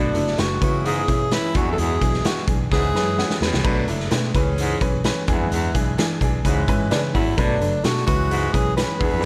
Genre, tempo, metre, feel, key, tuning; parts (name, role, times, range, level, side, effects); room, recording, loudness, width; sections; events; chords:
uptempo 1960s-style soul; 129 BPM; 4/4; straight; A4 = 442 Hz
breathy tenor saxophone; melody; 0.0-3.4, 6.9-9.3 s; D4 to B4; -27 LUFS; equal
warm saxophone section; second line; 0.0-9.3 s; B2 to B4; -32 LUFS; equal
clear baby grand piano; accompaniment; 0.0-9.3 s; E3 to B4; -29 LUFS; equal
breathy baritone saxophone; riff; 0.0-9.3 s; E2 to B2; -30 LUFS; equal
vintage muted fingered electric bass; bass; 0.0-9.2 s; F#1 to E3; -27 LUFS; equal
raw garage drum kit; drums; 0.1-9.1 s; crash cymbal, hi-hat, kick drum, snare drum; -25 LUFS; equal
light reverb; -21 LUFS; mono
0.0-9.3 A section
drum fill 2.7-3.6
0.0 Bm7; 0.6 C#m7; 1.5 E7; 2.7 C#m7; 3.6 Bm7; 4.3 C#m7; 5.3 E7; 6.4 C#m7; 7.4 Bm7; 8.1 C#m7